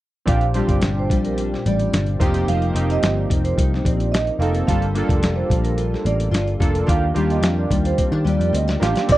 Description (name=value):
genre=indie pop, bedroom pop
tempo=109 BPM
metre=4/4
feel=straight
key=Bb major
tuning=A4 = 440 Hz
part: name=vibraphone with soft mallets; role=second line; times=0.3-9.0 s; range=Bb4 to F5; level=-26 LUFS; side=right 6 dB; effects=lush chorus, tape echo
part: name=nylon-string guitar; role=accompaniment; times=0.3-9.2 s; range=Bb2 to Bb4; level=-26 LUFS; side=left 5 dB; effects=ensemble chorus, warbly pitch drift
part: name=warm analog keys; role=accompaniment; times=0.3-9.2 s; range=Bb3 to A4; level=-25 LUFS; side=right 2 dB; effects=chorus
part: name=vintage muted picked electric bass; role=bass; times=0.3-9.2 s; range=F1 to Eb3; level=-21 LUFS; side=equal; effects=none
part: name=dusty soul sampler-style drum kit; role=drums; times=0.3-9.2 s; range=crash cymbal, hi-hat, kick drum, snare drum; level=-22 LUFS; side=equal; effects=none
part: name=warm velvety synth lead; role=melody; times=9.1-9.2 s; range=D5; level=-11 LUFS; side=right 3 dB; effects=analog chorus
room=little or no reverb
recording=dry, close 1970s-style studio recording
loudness=-17 LUFS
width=side -15 dB against mid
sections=0.3-9.1 A section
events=drum fill 8.0-9.1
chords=0.3 Bb6; 2.2 F7sus4; 4.7 Gm9; 6.9 Ebmaj9